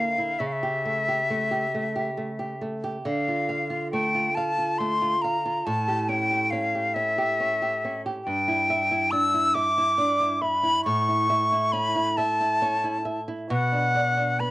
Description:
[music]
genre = romantic duo for flute and classical guitar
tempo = 46 BPM (dotted quarters)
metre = 6/8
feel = rubato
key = unclear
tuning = A4 = 436 Hz
[part]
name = bright silver concert flute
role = melody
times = 0.0-14.5 s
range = E5 to E6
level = -23 LUFS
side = left 1 dB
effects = cassette tape
[part]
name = nylon-string guitar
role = accompaniment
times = 0.0-14.5 s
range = G2 to F5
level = -28 LUFS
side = right 2 dB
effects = cassette tape
[sound]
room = light reverb, small room ambience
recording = home recording on cassette, nothing above 10.8 kHz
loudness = -22 LUFS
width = side -18 dB against mid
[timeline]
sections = 0.0-14.5 A section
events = none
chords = 0.4 A7/C#; 3.1 Dm; 5.7 A7; 8.3 Em7/G; 10.9 A; 13.5 Bm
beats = | 0.40 1.73 | 3.05 4.36 | 5.66 6.95 | 8.25 9.55 | 10.85 12.17 | 13.50

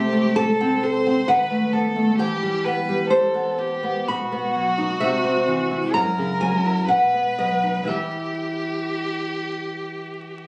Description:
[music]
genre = romantic duo for violin and classical guitar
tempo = 56-67 BPM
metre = 3/4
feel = rubato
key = E minor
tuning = A4 = 437 Hz
[part]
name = rich violin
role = melody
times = 0.0-10.5 s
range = F#4 to C5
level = -29 LUFS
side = equal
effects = none
[part]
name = nylon-string guitar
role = accompaniment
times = 0.0-10.5 s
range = F#2 to B5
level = -23 LUFS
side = equal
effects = none
[sound]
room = moderate studio reverb, RT60 0.6 s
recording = recorded on a phone in the room, club reverb, vinyl crackle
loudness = -22 LUFS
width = mono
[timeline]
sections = 0.0-10.5 A section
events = none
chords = 0.0 Am/C; 1.3 B7/D#; 2.2 Em; 4.1 B; 5.0 C; 5.9 F#7; 6.9 B; 7.9 Em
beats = 0.37 1.28 | 2.18 3.10 4.07 | 5.00 5.93 6.88 | 7.88 8.91 9.95

